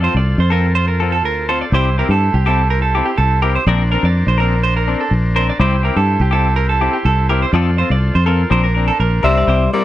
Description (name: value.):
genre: highlife.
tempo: 124 BPM.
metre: 4/4.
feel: straight.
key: C mixolydian.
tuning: A4 = 440 Hz.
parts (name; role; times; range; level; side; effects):
clean electric guitar; accompaniment; 0.0-9.8 s; F3 to Bb4; -22 LUFS; left 8 dB; spring reverb.
overdriven combo organ; sustained chords; 0.0-9.5 s; D4 to C5; -26 LUFS; left 2 dB; none.
semi-hollow electric guitar; arpeggios; 0.0-9.7 s; G4 to D5; -19 LUFS; right 6 dB; slapback echo.
fingered electric bass; bass; 0.0-9.7 s; Bb1 to G2; -15 LUFS; equal; none.
electric guitar at the edge of break-up; melody; 9.2-9.8 s; Bb4 to E5; -15 LUFS; left 1 dB; none.
mellow tenor saxophone; second line; 9.2-9.8 s; G3; -19 LUFS; left 8 dB; none.
room: little or no reverb.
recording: dry, close 1970s-style studio recording.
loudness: -13 LUFS.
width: side -14 dB against mid.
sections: 0.0-9.5 A section.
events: none.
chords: 0.0 F; 1.7 C; 3.7 Bbadd9; 5.6 C; 7.5 F; 8.5 Bbadd9.